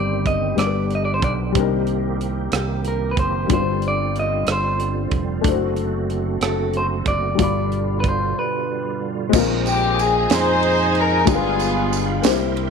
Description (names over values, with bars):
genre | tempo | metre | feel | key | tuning
slow gospel | 62 BPM (dotted quarters) | 6/8 | straight | unclear | A4 = 440 Hz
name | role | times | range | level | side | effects
clean electric guitar | melody | 0.0-9.1 s | G4 to Eb5 | -24 LUFS | equal | spring reverb
warm upright piano | accompaniment | 0.0-12.7 s | G2 to B5 | -24 LUFS | left 11 dB | none
bright tonewheel organ | sustained chords | 0.0-12.7 s | B2 to C6 | -28 LUFS | right 11 dB | fast rotary speaker, chorus vibrato
fingered electric bass | bass | 0.0-12.7 s | F1 to F2 | -24 LUFS | right 1 dB | none
tight funk drum kit | drums | 0.3-12.7 s | crash cymbal, hi-hat, kick drum, ride cymbal, rim click, snare drum | -23 LUFS | right 4 dB | none
tambourine | percussion | 9.3-12.5 s | none | -32 LUFS | right 17 dB | none
warm studio string section | melody | 9.7-12.2 s | B3 to C5 | -18 LUFS | left 1 dB | slapback echo
room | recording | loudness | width
light reverb, studio reverb | 1960s-style stereo with parts hard left and right | -18 LUFS | side -6 dB against mid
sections
0.0-9.3 A section; 9.3-12.7 B section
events
break 8.4-9.3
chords
0.0 Cm/G; 0.6 G; 1.6 Cm7; 3.5 G7sus4; 5.4 D7/F#; 7.4 G7; 9.3 Bb9sus4; 11.3 G7b9